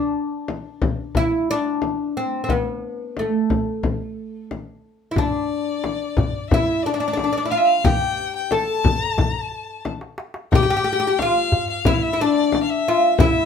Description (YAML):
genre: Turkish makam ensemble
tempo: 90 BPM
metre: 4/4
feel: straight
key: unclear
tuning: A4 = 440 Hz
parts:
  - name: oud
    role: melody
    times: 0.0-13.5 s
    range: A3 to A4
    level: -21 LUFS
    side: left 1 dB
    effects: none
  - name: frame drum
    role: percussion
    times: 0.5-13.3 s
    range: none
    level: -22 LUFS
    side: left 3 dB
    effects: none
  - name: clear violin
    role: second line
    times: 5.2-13.5 s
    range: D5 to A5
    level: -24 LUFS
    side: left 6 dB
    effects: none
  - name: darbuka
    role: percussion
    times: 5.2-13.5 s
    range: none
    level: -24 LUFS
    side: equal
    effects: none
room: wet studio reverb, RT60 0.6 s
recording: minimal, uncompressed stereo recording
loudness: -18 LUFS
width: side -7 dB against mid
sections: 0.0-10.5 A section; 10.5-13.5 B section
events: drum fill 9.9-10.5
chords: none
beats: 0.49 1.16 1.83 | 2.50 3.17 3.84 4.50 | 5.17 5.84 6.51 7.18 | 7.85 8.52 9.19 9.86 | 10.53 11.19 11.86 12.53 | 13.20